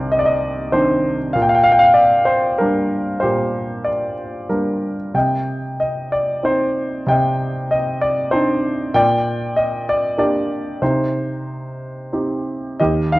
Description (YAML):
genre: classical, lyrical solo piano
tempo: 95 BPM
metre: 3/4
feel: rubato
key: C minor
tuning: A4 = 442 Hz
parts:
  - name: warm grand piano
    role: solo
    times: 0.0-13.2 s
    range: C2 to G5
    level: -16 LUFS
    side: equal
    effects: none
room: moderate recital hall reverb, RT60 1.6 s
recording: worn, warbling old tape, cassette tape, warbly pitch drift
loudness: -16 LUFS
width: side -19 dB against mid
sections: 0.0-12.8 A section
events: none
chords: 0.0 Cmadd9; 1.3 Bb6; 5.1 Cmadd9; 8.9 Bb6; 10.8 Cm